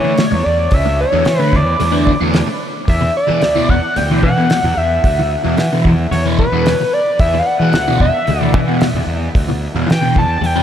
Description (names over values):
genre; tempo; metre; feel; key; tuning
psychedelic rock; 111 BPM; 4/4; straight; E dorian; A4 = 440 Hz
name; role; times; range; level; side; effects
overdriven synth lead; melody; 0.0-10.6 s; B4 to A5; -17 LUFS; equal; distortion, diffuse ambient delay
fuzz guitar; riff; 0.0-10.6 s; E2 to D4; -18 LUFS; equal; distortion, phaser
fuzz fingered electric bass; bass; 0.0-10.6 s; C#2 to E3; -18 LUFS; equal; overdrive
cloth-damped thuddy drum kit; drums; 0.2-10.6 s; hi-hat, kick drum, snare drum; -19 LUFS; equal; none
room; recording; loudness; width
moderate huge ambient reverb, RT60 4.9 s; dreamy mix soaked in reverb; -12 LUFS; side -10 dB against mid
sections
0.0-10.6 A section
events
analog synth lead solo 0.0-10.6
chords
0.0 D5; 2.9 E5